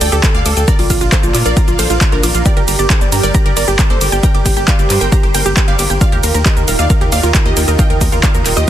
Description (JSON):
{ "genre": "uplifting trance", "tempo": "135 BPM", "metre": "4/4", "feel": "straight", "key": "G minor", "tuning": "A4 = 440 Hz", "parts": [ { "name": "wide unison pluck", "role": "melody", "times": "0.0-8.7 s", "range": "D4 to G5", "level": "-20 LUFS", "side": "right 1 dB", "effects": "sidechain pumping, ping-pong delay" }, { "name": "wide unison pluck", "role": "second line", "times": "0.0-8.7 s", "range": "F4 to G5", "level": "-24 LUFS", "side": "right 2 dB", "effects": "none" }, { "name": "lush unison pad", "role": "sustained chords", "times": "0.0-8.7 s", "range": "G3 to F5", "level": "-24 LUFS", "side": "equal", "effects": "chorus, phaser, vintage 12-bit sampler grit, sidechain pumping" }, { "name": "wide unison pluck", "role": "arpeggios", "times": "0.0-8.6 s", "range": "F4 to D6", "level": "-22 LUFS", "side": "right 3 dB", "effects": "sidechain pumping, tape echo" }, { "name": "tight sequencer bass", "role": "bass", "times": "0.0-8.7 s", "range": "Eb1 to Bb2", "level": "-17 LUFS", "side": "equal", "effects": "sidechain pumping" }, { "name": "big-room dance drum kit", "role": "drums", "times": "0.0-8.7 s", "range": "handclaps, hi-hat, ride cymbal, shaker", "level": "-18 LUFS", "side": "right 1 dB", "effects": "overdrive" }, { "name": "electronic kick drum", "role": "drums", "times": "0.2-8.3 s", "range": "none", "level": "-13 LUFS", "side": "equal", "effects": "overdrive" } ], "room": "little or no reverb", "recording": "dense, heavily limited modern master", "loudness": "-10 LUFS", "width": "side -11 dB against mid", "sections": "0.0-8.7 A section", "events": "none", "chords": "0.0 Dsus4; 0.7 Bb; 2.5 Gm; 6.0 Ebadd9", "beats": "0.23 | 0.68 1.12 1.57 2.01 | 2.46 2.90 3.35 3.79 | 4.23 4.68 5.12 5.57 | 6.01 6.46 6.90 7.34 | 7.79 8.23 8.68" }